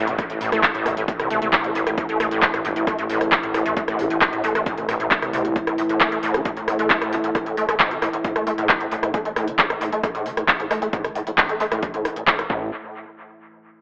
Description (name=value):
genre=driving peak-time techno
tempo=134 BPM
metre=4/4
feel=straight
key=unclear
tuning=A4 = 440 Hz
part: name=overdriven acid bass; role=riff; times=0.0-12.7 s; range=A1 to A3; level=-24 LUFS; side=equal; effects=distortion, ensemble chorus, sidechain pumping, analog delay
part: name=growling FM bass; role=bass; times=0.0-5.5, 12.5-12.7 s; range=G1 to C2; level=-27 LUFS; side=equal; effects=sidechain pumping
part: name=analog drone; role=drone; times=0.4-12.8 s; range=A2 to E3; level=-28 LUFS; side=equal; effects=chorus, sidechain pumping
part: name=downlifter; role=sound effects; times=0.0-2.0 s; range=none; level=-37 LUFS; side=equal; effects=none
part: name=techno drum kit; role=drums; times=0.1-12.5 s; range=handclaps, hi-hat, rim click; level=-21 LUFS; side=equal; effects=dub echo
part: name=electronic kick drum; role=drums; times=0.2-12.6 s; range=none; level=-28 LUFS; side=equal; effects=none
room=moderate plate reverb, RT60 1.4 s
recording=echo-heavy mix, telephone sound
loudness=-18 LUFS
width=side -27 dB against mid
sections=0.0-12.7 A section; 12.7-13.8 B section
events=filter sweep on acid bass 0.0-12.7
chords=0.0 A5; 12.7 N.C.